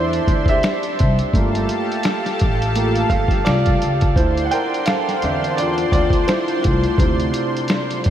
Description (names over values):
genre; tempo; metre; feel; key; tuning
lo-fi hip hop; 85 BPM; 4/4; swing 58% on 16ths; D minor; A4 = 439 Hz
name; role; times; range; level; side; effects
warm upright piano; accompaniment; 0.0-8.1 s; C3 to G5; -20 LUFS; right 1 dB; none
lush unison pad; sustained chords; 0.0-8.1 s; D4 to C6; -23 LUFS; left 1 dB; chorus
upright bass; bass; 0.0-8.1 s; G1 to E2; -22 LUFS; equal; none
lo-fi sampler-style drum kit; drums; 0.1-8.1 s; finger snaps, hi-hat, kick drum, snare drum; -20 LUFS; equal; vintage 12-bit sampler grit
room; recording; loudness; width
moderate huge ambient reverb, RT60 4.9 s; dreamy mix soaked in reverb, vinyl crackle; -16 LUFS; side -10 dB against mid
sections
0.0-8.1 A section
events
upright piano solo 0.0-8.1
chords
0.0 Dm9; 1.3 Gm9; 4.2 Dm9